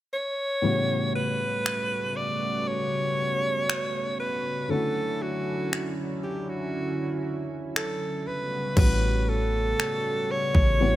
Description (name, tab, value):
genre	contemporary R&B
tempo	59 BPM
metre	4/4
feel	straight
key	unclear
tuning	A4 = 440 Hz
part	breathy alto saxophone	melody	0.1-11.0 s	F#4 to D5	-28 LUFS	right 1 dB	digital delay
part	dark baby grand piano	accompaniment	0.6-11.0 s	A2 to F#4	-30 LUFS	left 3 dB	none
part	chorused pulse-width pad	sustained chords	0.6-11.0 s	C#3 to F#4	-32 LUFS	right 1 dB	none
part	trap drum kit	drums	1.7-10.8 s	crash cymbal, finger snaps, kick drum	-26 LUFS	equal	none
part	warm 808-style bass	bass	8.8-11.0 s	A1	-24 LUFS	equal	none
room	digital ambience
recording	none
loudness	-24 LUFS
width	side -14 dB against mid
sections	0.6-8.8 A section; 8.8-11.0 B section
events	break 4.7-8.8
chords	0.0 N.C.; 0.6 A13; 4.7 Dmaj9; 8.3 A13